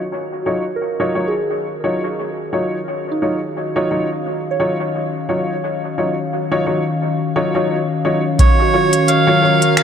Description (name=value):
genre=ambient dub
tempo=87 BPM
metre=4/4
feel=swing 56% on 16ths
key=Eb minor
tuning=A4 = 440 Hz
part: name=warbly tape-like pad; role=sustained chords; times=0.0-9.8 s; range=Eb3 to F5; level=-22 LUFS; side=left 2 dB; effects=chorus, built-in reverb
part: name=soft synth bell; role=arpeggios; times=0.0-9.8 s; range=Eb4 to Db5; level=-26 LUFS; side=right 2 dB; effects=chorus, phaser, low-pass filter, dub echo
part: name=warm upright piano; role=stabs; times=0.5-9.6 s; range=Gb3 to Db5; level=-20 LUFS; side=left 1 dB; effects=vintage 12-bit sampler grit, low-pass filter, dub echo
part: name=melodica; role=melody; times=8.4-9.8 s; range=Db5 to F5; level=-15 LUFS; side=right 3 dB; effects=dub echo
part: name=electronic kick drum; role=drums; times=8.4-8.5 s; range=none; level=-12 LUFS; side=equal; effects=overdrive
part: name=organic electronic drum kit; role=drums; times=8.4-9.8 s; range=finger snaps, hi-hat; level=-17 LUFS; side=left 1 dB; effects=none
part: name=drifting glass-harmonics texture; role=texture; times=9.0-9.8 s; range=Bb4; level=-28 LUFS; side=right 14 dB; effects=chorus, built-in reverb
room=moderate huge ambient reverb, RT60 5.0 s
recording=none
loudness=-16 LUFS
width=side -8 dB against mid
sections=0.0-8.4 A section; 8.4-9.8 B section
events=filter sweep on ambient pad 0.0-8.4; filter sweep on synth bell 0.0-8.4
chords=0.0 Ebm9